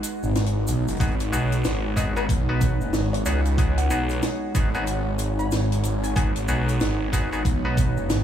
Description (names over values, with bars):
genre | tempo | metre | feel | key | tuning
glitch hop | 93 BPM | 4/4 | swing 61% on 16ths | G# minor | A4 = 441 Hz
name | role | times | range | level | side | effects
warbly tape-like pad | sustained chords | 0.0-8.2 s | G#3 to C#5 | -30 LUFS | equal | chorus, built-in reverb, vintage 12-bit sampler grit, sidechain pumping
compact cocktail drum kit | drums | 0.0-8.2 s | hi-hat, rim click, snare drum | -30 LUFS | left 1 dB | none
cabasa | percussion | 0.0-8.2 s | none | -39 LUFS | right 4 dB | none
phased detuned saw bass | bass | 0.2-8.2 s | F#1 to C#2 | -24 LUFS | equal | phaser, tube saturation
bright clav | stabs | 1.0-8.2 s | B3 to B4 | -31 LUFS | left 1 dB | sidechain pumping, dub echo
electronic kick drum | drums | 1.0-7.9 s | none | -22 LUFS | equal | none
woody wave-folded pluck | melody | 2.0-6.3 s | B4 to B5 | -35 LUFS | left 1 dB | lush chorus, dub echo
room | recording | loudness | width
light reverb | small room ambience | -21 LUFS | side -10 dB against mid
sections
0.0-8.2 A section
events
none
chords
0.0 G#m7